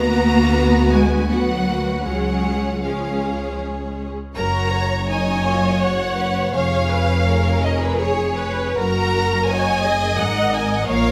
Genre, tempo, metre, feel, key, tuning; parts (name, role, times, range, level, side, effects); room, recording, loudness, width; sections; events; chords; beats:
classical, slow romantic movement for string orchestra; 74-87 BPM; 3/4; rubato; F# major; A4 = 440 Hz
clear symphonic violin section; melody; 0.0-11.1 s; B4 to A#5; -26 LUFS; equal
warm symphonic violin section; second line; 0.0-11.1 s; D#4 to D#5; -28 LUFS; equal
rich symphonic viola section; accompaniment; 0.0-11.1 s; G#3 to D#5; -26 LUFS; equal
rich symphonic cello section; bass; 0.0-11.1 s; E#2 to A#3; -26 LUFS; equal
warm studio double bass section; bass; 0.0-11.1 s; E#1 to D2; -25 LUFS; equal
wet stone room reverb, RT60 1.2 s; -19 LUFS; mono
0.0-4.4 A section; 4.4-11.1 B section
0.0 Bm/D; 2.1 C#; 4.4 F#; 6.5 C#7/E#; 8.8 F#
0.57 1.30 | 2.07 2.84 3.60 | 4.36 5.09 5.82 | 6.54 7.26 7.98 | 8.77 9.49 10.19 | 10.88